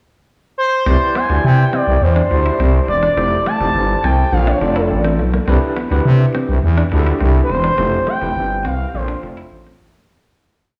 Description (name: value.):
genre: funk.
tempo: 104 BPM.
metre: 4/4.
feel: straight.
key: C major.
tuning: A4 = 440 Hz.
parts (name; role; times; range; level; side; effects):
expressive synth lead; melody; 0.6-9.5 s; A4 to A5; -20 LUFS; equal; chorus, analog delay.
overdriven tine electric piano; accompaniment; 0.9-9.8 s; C4 to D5; -26 LUFS; equal; fast tremolo.
semi-hollow electric guitar; riff; 0.9-10.1 s; A3 to E4; -28 LUFS; equal; subtle chorus.
growling FM bass; bass; 0.9-10.0 s; E1 to C3; -18 LUFS; equal; none.
room: moderate lush hall reverb, RT60 2.8 s.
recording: dreamy mix soaked in reverb, studio reverb.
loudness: -16 LUFS.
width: mono.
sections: 0.0-0.9 pickup bar; 0.9-10.1 verse.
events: fade-out 7.8-10.1.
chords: 0.0 N.C.; 0.9 Cmaj9; 3.2 Fmaj9; 4.3 Bbmaj9; 5.5 Cmaj9; 7.8 Fmaj9; 8.9 Bbmaj9.